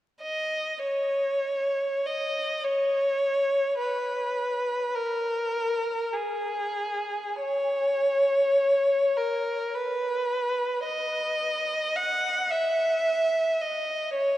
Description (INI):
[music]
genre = classical, free, expressive piece for unaccompanied violin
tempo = 44-55 BPM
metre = 4/4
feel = rubato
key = unclear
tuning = A4 = 439 Hz
[part]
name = rich violin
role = solo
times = 0.2-14.4 s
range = G#4 to F#5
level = -24 LUFS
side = equal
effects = none
[sound]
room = wet cathedral reverb, RT60 4.5 s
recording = dark, warm production, vinyl crackle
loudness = -24 LUFS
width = side -14 dB against mid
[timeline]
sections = 0.2-14.4 A section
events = none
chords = none